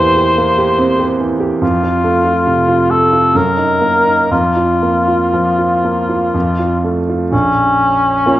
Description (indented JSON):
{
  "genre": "classical, romantic duo for cor anglais and grand piano",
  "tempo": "58-74 BPM",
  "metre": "3/4",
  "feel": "rubato",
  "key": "Bb minor",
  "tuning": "A4 = 441 Hz",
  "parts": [
    { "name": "mellow cor anglais", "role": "melody", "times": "0.0-8.4 s", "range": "Db4 to C5", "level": "-13 LUFS", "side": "left 1 dB", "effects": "none" },
    { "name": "clear grand piano", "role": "accompaniment", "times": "0.0-8.4 s", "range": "Bb1 to G4", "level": "-14 LUFS", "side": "right 2 dB", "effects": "none" }
  ],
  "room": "wet recital hall reverb, RT60 1.4 s",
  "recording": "worn, warbling old tape, cassette tape, warbly pitch drift",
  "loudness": "-11 LUFS",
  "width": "side -14 dB against mid",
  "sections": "0.0-7.3 A section; 7.3-8.4 A section",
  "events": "none",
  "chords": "0.0 C7/E; 1.6 F; 3.3 Ebm/Gb; 4.3 Bb5/F; 6.3 F; 7.3 Bbm"
}